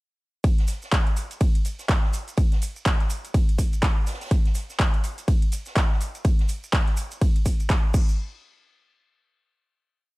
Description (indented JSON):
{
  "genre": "house",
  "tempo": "124 BPM",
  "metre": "4/4",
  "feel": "swing 59% on 16ths",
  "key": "none",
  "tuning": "none",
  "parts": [
    { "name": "big-room dance drum kit", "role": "drums", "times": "0.4-8.1 s", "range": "crash cymbal, handclaps, hi-hat, ride cymbal", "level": "-30 LUFS", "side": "equal", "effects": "overdrive" },
    { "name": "electronic kick drum", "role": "drums", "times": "0.4-8.1 s", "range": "none", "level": "-20 LUFS", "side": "equal", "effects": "overdrive" },
    { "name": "open jazz drum kit", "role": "drums", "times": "0.4-7.8 s", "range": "hi-hat, snare drum", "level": "-43 LUFS", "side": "right 2 dB", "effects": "none" },
    { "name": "maracas", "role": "percussion", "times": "0.4-8.2 s", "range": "none", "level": "-41 LUFS", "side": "right 3 dB", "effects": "none" }
  ],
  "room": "studio ambience",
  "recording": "dark, warm production",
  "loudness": "-21 LUFS",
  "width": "side -22 dB against mid",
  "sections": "0.4-8.2 drop; 8.2-10.1 final hit",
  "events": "drop 0.4-8.2",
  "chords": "none"
}